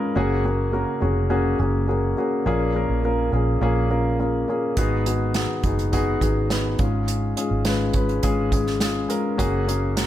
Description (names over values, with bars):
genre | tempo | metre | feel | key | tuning
piano-driven pop | 104 BPM | 4/4 | straight | F# major | A4 = 441 Hz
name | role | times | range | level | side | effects
dark baby grand piano | accompaniment | 0.0-10.1 s | G#2 to B4 | -22 LUFS | left 2 dB | none
vintage muted fingered electric bass | bass | 0.2-10.1 s | E#1 to A#1 | -24 LUFS | right 1 dB | none
unplugged drum kit | drums | 4.8-10.1 s | hi-hat, kick drum, snare drum | -25 LUFS | right 1 dB | none
room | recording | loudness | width
light reverb, small room ambience | none | -20 LUFS | side -12 dB against mid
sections
0.0-10.1 A section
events
none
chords
0.2 F#add9; 2.5 A#m7; 4.8 G#m7; 6.8 C#/G#; 9.4 F#add9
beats
| 0.16 0.73 1.31 1.89 | 2.46 3.04 3.62 4.20 | 4.77 5.35 5.93 6.50 | 7.08 7.66 8.24 8.81 | 9.39 9.97